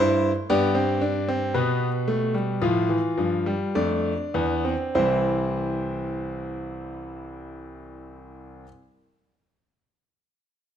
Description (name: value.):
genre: classical, baroque-style 4-part fugue for grand piano.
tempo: 48-60 BPM.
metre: 4/4.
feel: straight.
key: C major.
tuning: A4 = 440 Hz.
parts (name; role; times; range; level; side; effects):
clear grand piano; solo; 0.0-8.7 s; C2 to D5; -23 LUFS; equal; none.
room: moderate recital hall reverb, RT60 1.3 s.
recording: close, detailed microphones.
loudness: -22 LUFS.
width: side -9 dB against mid.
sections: 0.0-4.9 A section; 4.9-9.9 B section.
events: slowing down 0.0-4.9.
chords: 0.5 G7; 4.9 C.